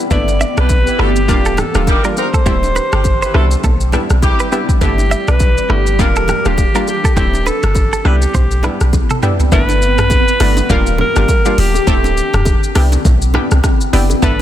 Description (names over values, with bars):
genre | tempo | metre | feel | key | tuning
afrobeats | 102 BPM | 4/4 | swing 58% on 16ths | G major | A4 = 440 Hz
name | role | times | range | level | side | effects
analog pluck | accompaniment | 0.0-14.4 s | G3 to A4 | -20 LUFS | left 1 dB | chorus
granular cloud pad | sustained chords | 0.0-14.4 s | Eb3 to G4 | -22 LUFS | left 1 dB | built-in reverb
breathy alto saxophone | melody | 0.1-14.4 s | G4 to D5 | -19 LUFS | equal | digital delay
clean 808-style bass | bass | 0.1-14.4 s | D1 to C2 | -15 LUFS | equal | none
afro-pop drum kit | drums | 0.1-14.4 s | hi-hat, kick drum, rim click, shaker, toms | -16 LUFS | equal | soft clipping on snare
congas and bongos | percussion | 0.1-14.4 s | none | -25 LUFS | right 4 dB | none
direct-recorded clean electric guitar | riff | 0.4-9.3 s | G4 to E5 | -23 LUFS | right 5 dB | digital delay
clear horn section | second line | 0.6-4.7 s | G3 to B4 | -23 LUFS | left 1 dB | none
room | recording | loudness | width
little or no reverb | dense, heavily limited modern master | -11 LUFS | side -12 dB against mid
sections
0.0-9.5 A section; 9.5-14.4 B section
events
drum fill 8.9-9.5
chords
0.1 G6; 1.3 Ebmaj7; 2.5 D7sus4; 3.3 Cmaj7; 4.8 G6; 6.0 Ebmaj7; 7.2 D7sus4; 8.1 Cmaj7; 9.5 G6; 10.7 Ebmaj7; 11.9 D7sus4; 12.8 Cmaj7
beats
| 0.11 0.70 1.28 1.87 | 2.46 3.05 3.64 4.23 | 4.82 5.40 5.99 6.58 | 7.17 7.76 8.34 8.93 | 9.52 10.11 10.70 11.29 | 11.87 12.46 13.05 13.64 | 14.23